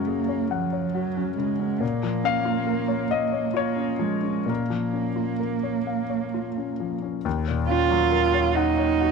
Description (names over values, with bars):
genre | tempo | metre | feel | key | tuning
neoclassical piano and strings | 64-70 BPM | 3/4 | rubato | Eb minor | A4 = 441 Hz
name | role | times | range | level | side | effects
dark cello | second line | 0.0-9.1 s | F3 to F4 | -25 LUFS | right 12 dB | none
clear grand piano | accompaniment | 0.0-9.1 s | Eb2 to Gb5 | -26 LUFS | left 9 dB | none
dark double bass | bass | 7.3-9.1 s | Eb2 | -28 LUFS | equal | none
room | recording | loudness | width
moderate plate reverb, RT60 3.4 s | 1960s-style stereo with parts hard left and right | -22 LUFS | side -5 dB against mid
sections
0.0-7.3 A section; 7.3-9.1 A section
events
none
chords
0.0 Gbadd9; 1.8 Bbm; 7.3 Ebm7